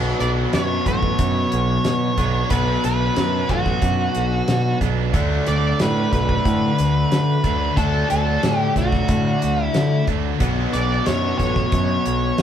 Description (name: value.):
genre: classic rock.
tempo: 91 BPM.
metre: 4/4.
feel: straight.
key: B minor.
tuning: A4 = 435 Hz.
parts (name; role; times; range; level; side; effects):
cranked stack guitar; riff; 0.0-12.4 s; B2 to D4; -23 LUFS; left 6 dB; overdrive.
distorted electric guitar; riff; 0.0-12.4 s; B2 to D4; -26 LUFS; right 8 dB; overdrive.
growling fingered electric bass; bass; 0.0-12.4 s; A1 to D3; -23 LUFS; right 1 dB; overdrive.
octave-fuzz lead guitar; melody; 0.2-12.4 s; F#4 to D5; -24 LUFS; equal; distortion.
damped 70s drum kit; drums; 0.2-12.4 s; hi-hat, kick drum, snare drum; -24 LUFS; right 1 dB; none.
room: light reverb.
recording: band playing live in one room.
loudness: -17 LUFS.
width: side -9 dB against mid.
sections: 0.0-12.4 A section.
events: none.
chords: 0.0 Bmadd9; 5.1 D; 10.4 Bmadd9.